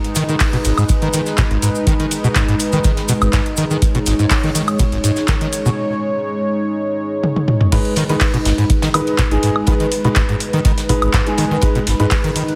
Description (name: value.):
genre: acid house.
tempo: 123 BPM.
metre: 4/4.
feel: straight.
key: G# minor pentatonic.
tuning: A4 = 440 Hz.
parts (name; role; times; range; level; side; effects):
warm analog pad; sustained chords; 0.0-12.6 s; G#3 to C#5; -23 LUFS; equal; chorus, sidechain pumping.
electro analog drum machine; drums; 0.0-12.6 s; crash cymbal, handclaps, hi-hat, toms, woodblock; -23 LUFS; equal; none.
modern studio drum kit; drums; 0.1-12.5 s; hi-hat, ride cymbal, snare drum; -34 LUFS; equal; none.
acid bass, saw; riff; 0.2-12.4 s; G#1 to D#3; -22 LUFS; equal; overdrive, ensemble chorus, digital delay.
cabasa; percussion; 0.2-5.7 s; none; -29 LUFS; equal; none.
electronic kick drum; drums; 0.4-12.2 s; none; -19 LUFS; equal; none.
warm concert grand piano; stabs; 7.7-12.1 s; G#3 to B4; -23 LUFS; equal; digital delay.
room: moderate plate reverb, RT60 1.6 s, studio ambience.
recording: heavily compressed radio sound.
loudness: -16 LUFS.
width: mono.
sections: 0.0-7.7 A section; 7.7-12.6 B section.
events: break 5.8-7.7; drum fill 7.2-7.7; drop 7.7-12.6.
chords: 0.0 G#m.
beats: 0.41 0.89 1.38 | 1.87 2.36 2.84 3.33 | 3.82 4.31 4.79 5.28 | 5.77 6.26 6.75 7.23 | 7.72 8.21 8.70 9.19 | 9.67 10.16 10.65 11.14 | 11.62 12.11.